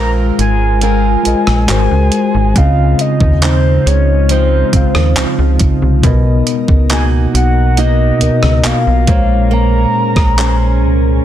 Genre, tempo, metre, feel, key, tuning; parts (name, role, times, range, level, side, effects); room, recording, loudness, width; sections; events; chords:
contemporary R&B; 69 BPM; 4/4; straight; A4 = 440 Hz
soft octave-layered synth lead; melody; 0.0-11.2 s; C5 to Bb5; -18 LUFS; equal; chorus, phaser
mellow tine electric piano; accompaniment; 0.0-11.2 s; Bb2 to F5; -17 LUFS; left 3 dB; slow stereo tremolo
glassy FM pad; sustained chords; 0.0-11.2 s; B2 to C5; -20 LUFS; left 1 dB; ensemble chorus, built-in reverb
fingerpicked old ladder-braced acoustic guitar; arpeggios; 0.0-11.2 s; B2 to C5; -21 LUFS; right 8 dB
slap-like FM bass; bass; 0.0-11.2 s; Ab1 to Eb2; -13 LUFS; equal
clean 12-bit digital drum machine; drums; 0.4-10.6 s; handclaps, hi-hat, kick drum, rim click; -15 LUFS; equal; soft clipping on snare
digital ambience; dense, heavily limited modern master; -9 LUFS; side -11 dB against mid
0.0-11.2 A section
hi-hats muted 9.5-11.2
0.0 Ab69; 1.7 Ab9; 2.6 Dbmaj9; 6.0 Bmaj7; 9.1 Bbm9